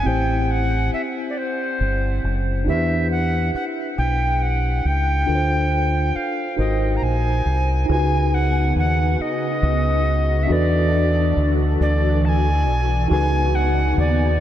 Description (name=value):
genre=R&B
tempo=46 BPM (dotted quarters)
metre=6/8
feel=straight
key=unclear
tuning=A4 = 441 Hz
part: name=mellow tenor recorder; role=melody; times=0.0-14.4 s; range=C5 to A#5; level=-23 LUFS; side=equal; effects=none
part: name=mellow tine electric piano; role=accompaniment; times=0.0-14.4 s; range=C4 to C5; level=-25 LUFS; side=left 1 dB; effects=medium stereo tremolo
part: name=deep dub fingered electric bass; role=bass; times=0.1-14.4 s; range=F#1 to E2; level=-20 LUFS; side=equal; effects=none
part: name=hollow soft pad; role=sustained chords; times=7.9-14.4 s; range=C#3 to A4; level=-26 LUFS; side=right 1 dB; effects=ensemble chorus
room=moderate huge ambient reverb, RT60 7.3 s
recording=dreamy mix soaked in reverb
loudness=-18 LUFS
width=side -11 dB against mid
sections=0.0-7.9 A section; 7.9-14.4 B section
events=none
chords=0.1 Am7; 2.7 Em7; 5.3 Dm7; 6.6 G#9; 7.9 C#9sus4; 10.5 E9sus4; 13.1 C#9sus4